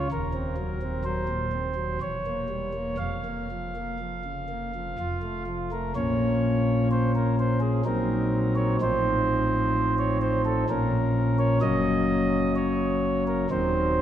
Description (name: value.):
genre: classical, chorale-style piece for pipe organ.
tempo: 63 BPM.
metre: 3/4.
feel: rubato.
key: Bb minor.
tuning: A4 = 441 Hz.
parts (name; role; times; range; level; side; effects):
chamber organ, principal; solo; 0.0-14.0 s; Eb1 to F5; -23 LUFS; equal; none.
room: wet church reverb, RT60 2.7 s.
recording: none.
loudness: -23 LUFS.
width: side -10 dB against mid.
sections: 0.0-6.0 A section; 6.0-14.0 B section.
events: none.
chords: 0.1 Cm7b5/Eb; 2.0 Edim7; 3.0 Bb5/F; 5.0 F; 6.0 Bbm; 7.9 Cm7b5/Bb; 8.8 F7/A; 10.7 Bbm; 11.6 Gb; 13.5 Cdim/Eb.